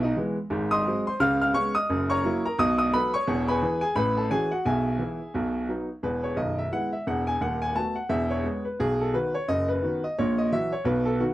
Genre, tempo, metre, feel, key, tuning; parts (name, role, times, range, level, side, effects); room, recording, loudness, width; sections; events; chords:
jazz, stride piano; 174 BPM; 4/4; swing 59% on 8ths; E major; A4 = 440 Hz
warm baby grand piano; solo; 0.0-11.3 s; B0 to E#6; -23 LUFS; equal
light reverb; dry, close 1970s-style studio recording; -23 LUFS; side -15 dB against mid
0.0-6.0 A section; 6.0-11.3 B section
0.5 G#7; 1.2 C#7; 1.9 F#7; 2.6 B7; 3.3 E; 3.9 A6; 4.6 E/B; 5.3 B; 6.0 E; 7.4 B7/D#; 8.1 E; 8.8 B; 10.2 F#7/A#